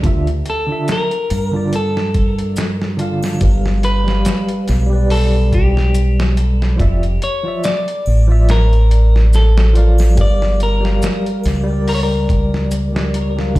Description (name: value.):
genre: trip hop.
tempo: 71 BPM.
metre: 4/4.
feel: swing 56% on 16ths.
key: unclear.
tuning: A4 = 440 Hz.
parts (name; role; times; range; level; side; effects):
tine electric piano; accompaniment; 0.0-13.6 s; D3 to F5; -21 LUFS; equal; medium tremolo, tape echo.
deep dub fingered electric bass; bass; 0.0-13.6 s; F1 to G2; -14 LUFS; equal; none.
dusty soul sampler-style drum kit; drums; 0.0-13.6 s; hi-hat, kick drum, snare drum; -20 LUFS; equal; none.
clean electric guitar; melody; 0.5-13.1 s; G4 to D5; -22 LUFS; left 2 dB; tape echo.
maracas and triangle; percussion; 0.9-12.9 s; none; -39 LUFS; right 2 dB; none.
room: digital ambience.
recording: played on a big sound system in a bare room, large studio reverb.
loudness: -13 LUFS.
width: side -18 dB against mid.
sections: 0.0-13.6 A section.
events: none.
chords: 0.0 Dm; 3.4 G; 6.8 Dmadd9/F; 10.2 Gm.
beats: | 0.03 0.88 1.73 2.57 | 3.42 4.26 5.11 5.95 | 6.79 7.64 8.48 9.33 | 10.18 11.02 11.87 12.71 | 13.56.